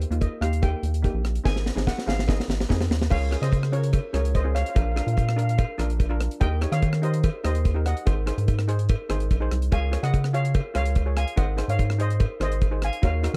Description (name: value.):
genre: calypso.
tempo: 145 BPM.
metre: 4/4.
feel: straight.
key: Db major.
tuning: A4 = 438 Hz.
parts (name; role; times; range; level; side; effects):
rubbery square bass; bass; 0.0-13.4 s; Ab1 to Eb3; -26 LUFS; equal; none.
deep reggae drum kit; drums; 0.0-13.4 s; crash cymbal, hi-hat, kick drum, rim click, snare drum; -27 LUFS; equal; none.
steel pan; accompaniment; 0.1-13.4 s; Bb3 to Db5; -36 LUFS; equal; none.
steel pan; melody; 0.2-13.3 s; Bb4 to Ab5; -34 LUFS; equal; none.
cowbell; percussion; 0.2-13.3 s; none; -39 LUFS; equal; none.
room: small room ambience.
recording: dry, close 1970s-style studio recording.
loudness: -24 LUFS.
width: mono.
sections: 0.0-3.1 A section; 3.1-13.4 B section.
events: steel pan solo 0.0-3.1; drum fill 1.5-3.1.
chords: 0.0 Eb; 1.5 Ab; 3.1 Dbmaj7; 4.8 Bb; 6.4 Eb7; 8.1 Ab7; 9.7 Db; 11.4 Ab.